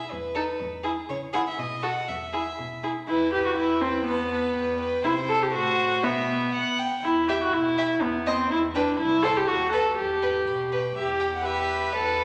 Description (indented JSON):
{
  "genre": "quick classical-period movement for string quartet",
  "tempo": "122 BPM",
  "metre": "2/4",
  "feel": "straight",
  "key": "E major, E minor from 3.1 s",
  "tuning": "A4 = 440 Hz",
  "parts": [
    { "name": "rich violin", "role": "melody", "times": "0.0-12.2 s", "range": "B4 to B5", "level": "-38 LUFS", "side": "equal", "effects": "none" },
    { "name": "rich cello", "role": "bass", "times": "0.1-12.2 s", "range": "C2 to C#3", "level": "-40 LUFS", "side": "equal", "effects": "none" },
    { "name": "rich violin", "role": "second line", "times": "0.4-12.2 s", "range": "G4 to G5", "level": "-32 LUFS", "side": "equal", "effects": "none" },
    { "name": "rich viola", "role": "accompaniment", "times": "0.4-12.2 s", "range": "B3 to B4", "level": "-27 LUFS", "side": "equal", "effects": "none" }
  ],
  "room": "wet recital hall reverb, RT60 1.6 s",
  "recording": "none",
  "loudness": "-25 LUFS",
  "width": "mono",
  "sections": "0.0-3.1 A section; 3.1-11.0 B section; 11.0-12.2 B section",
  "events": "none",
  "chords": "0.1 B/E; 0.6 E5; 1.1 C#m; 1.6 B; 2.1 E5; 3.1 Em; 4.1 Esus4; 5.0 C5; 5.5 F#dim/A; 6.0 Em/B; 7.0 Em; 8.0 B7/E; 8.5 Em; 9.0 C; 9.5 B7/D#; 10.0 Em"
}